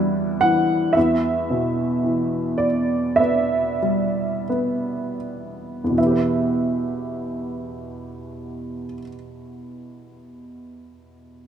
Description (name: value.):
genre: classical, lyrical solo piano.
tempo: 37-56 BPM.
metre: 4/4.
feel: rubato.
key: E minor.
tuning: A4 = 439 Hz.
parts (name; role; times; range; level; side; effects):
warm upright piano; solo; 0.0-11.5 s; E2 to F#5; -20 LUFS; right 1 dB; none.
room: moderate scoring stage reverb, RT60 1.9 s.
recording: none.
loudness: -19 LUFS.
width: side -8 dB against mid.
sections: 1.0-6.0 A section; 6.0-11.5 B section.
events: slowing down 0.0-6.0.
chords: 0.0 Em.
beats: | 0.96 2.05 3.20 4.49 | 5.98 7.56 9.10 10.62.